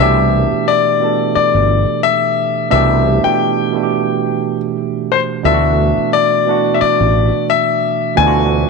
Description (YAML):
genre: R&B, neo-soul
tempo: 88 BPM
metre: 4/4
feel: swing 55% on 16ths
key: C major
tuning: A4 = 442 Hz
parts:
  - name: clear grand piano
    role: melody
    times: 0.0-8.7 s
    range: C5 to Ab5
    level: -14 LUFS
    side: left 12 dB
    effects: none
  - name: barky tine electric piano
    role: accompaniment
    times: 0.0-8.7 s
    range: B2 to A4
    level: -17 LUFS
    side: right 13 dB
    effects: overdrive
  - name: fretless electric bass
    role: bass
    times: 0.0-8.6 s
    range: G1 to D2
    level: -15 LUFS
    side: right 1 dB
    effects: ensemble chorus
room: moderate spring reverb, RT60 2.0 s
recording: 1960s-style stereo with parts hard left and right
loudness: -12 LUFS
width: side -4 dB against mid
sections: 0.0-8.7 A section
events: none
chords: 0.0 Cmaj9; 5.4 Dadd9